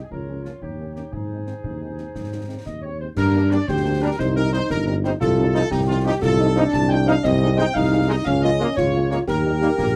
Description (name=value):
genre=military-style march for wind band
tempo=118 BPM (dotted quarters)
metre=6/8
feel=straight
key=Ab major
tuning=A4 = 441 Hz
part: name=warm trumpet section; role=melody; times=0.0-10.0 s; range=Eb4 to A5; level=-33 LUFS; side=equal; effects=none
part: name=dark woodwind section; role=second line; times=0.0-10.0 s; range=Eb4 to A5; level=-30 LUFS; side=equal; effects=none
part: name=dark tuba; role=bass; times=0.0-10.0 s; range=G1 to Ab2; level=-24 LUFS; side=equal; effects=none
part: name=concert bass drum, concert snare drum and clash cymbals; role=drums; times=0.1-10.0 s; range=none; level=-34 LUFS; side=equal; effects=none
part: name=mellow French horn section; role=accompaniment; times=0.3-9.7 s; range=Eb3 to F4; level=-30 LUFS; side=equal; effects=none
part: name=warm euphonium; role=second line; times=3.2-10.0 s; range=C4 to G4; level=-26 LUFS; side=equal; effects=none
part: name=mellow trombone section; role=sustained chords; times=3.5-9.9 s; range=F3 to Eb4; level=-27 LUFS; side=equal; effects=none
room=light reverb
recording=close, detailed microphones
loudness=-20 LUFS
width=mono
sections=0.0-3.2 A section; 3.2-10.0 B section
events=none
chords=0.1 Bbm/Db; 0.6 Eb7; 1.1 Ab; 3.2 Gm; 4.2 Cm; 5.2 F7/C; 7.2 Ab/C; 8.3 Bbm7/Db; 9.3 Eb